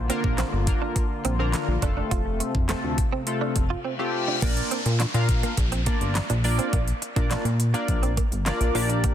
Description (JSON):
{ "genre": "dance-pop", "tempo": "104 BPM", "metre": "4/4", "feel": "straight", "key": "Bb major", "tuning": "A4 = 439 Hz", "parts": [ { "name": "warm analog pad", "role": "sustained chords", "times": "0.0-4.4 s", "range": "C3 to F4", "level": "-33 LUFS", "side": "left 3 dB", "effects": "chorus, sidechain pumping" }, { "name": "chorused synth bass", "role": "bass", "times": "0.0-9.1 s", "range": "F1 to Bb2", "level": "-25 LUFS", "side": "equal", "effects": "sidechain pumping" }, { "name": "chorused polysynth", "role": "accompaniment", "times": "0.1-9.1 s", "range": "A3 to F5", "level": "-28 LUFS", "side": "left 1 dB", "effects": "sidechain pumping" }, { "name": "direct-recorded clean electric guitar", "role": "riff", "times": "0.1-9.1 s", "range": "A3 to F4", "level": "-33 LUFS", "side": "right 8 dB", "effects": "ensemble chorus" }, { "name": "pop drum kit", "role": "drums", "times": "0.1-9.1 s", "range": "crash cymbal, handclaps, hi-hat, kick drum, snare drum", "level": "-26 LUFS", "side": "equal", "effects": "none" }, { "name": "reverse cymbal and downlifter", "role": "sound effects", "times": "3.8-9.0 s", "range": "none", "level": "-34 LUFS", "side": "left 2 dB", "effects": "none" } ], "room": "light reverb", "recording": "dense, heavily limited modern master", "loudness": "-22 LUFS", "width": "side -10 dB against mid", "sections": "0.0-4.4 A section; 4.4-9.1 B section", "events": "reverse cymbal 3.8-4.4", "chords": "0.0 Bb; 1.8 F; 4.4 Bb" }